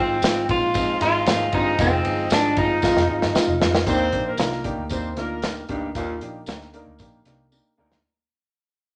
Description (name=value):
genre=uptempo 1960s-style soul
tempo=115 BPM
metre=4/4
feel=straight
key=Eb major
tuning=A4 = 440 Hz
part: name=electric guitar through a small old amp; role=melody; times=0.0-3.6 s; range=C4 to F4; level=-25 LUFS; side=equal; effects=none
part: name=dark upright piano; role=accompaniment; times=0.0-8.0 s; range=F3 to Bb4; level=-27 LUFS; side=equal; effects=none
part: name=vintage muted picked electric bass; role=bass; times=0.0-8.0 s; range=F1 to F2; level=-32 LUFS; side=equal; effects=none
part: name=warm soul drum kit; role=drums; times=0.2-8.0 s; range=hi-hat, kick drum, ride cymbal, snare drum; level=-27 LUFS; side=equal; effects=none
part: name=tambourine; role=percussion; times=0.2-7.6 s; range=none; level=-38 LUFS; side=equal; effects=none
part: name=dark horn section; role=second line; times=0.7-5.7 s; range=Bb3 to Eb5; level=-32 LUFS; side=equal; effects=none
part: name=breathy baritone saxophone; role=riff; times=1.3-8.0 s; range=D2 to G2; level=-34 LUFS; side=equal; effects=none
room=wet studio reverb, RT60 0.6 s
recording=nothing above 11.0 kHz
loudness=-22 LUFS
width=mono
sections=0.0-3.9 A section; 3.9-8.0 B section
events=drum fill 2.8-3.9, 7.5-8.0; fade-out 3.9-8.0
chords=0.0 Fm7; 3.9 Ebmaj7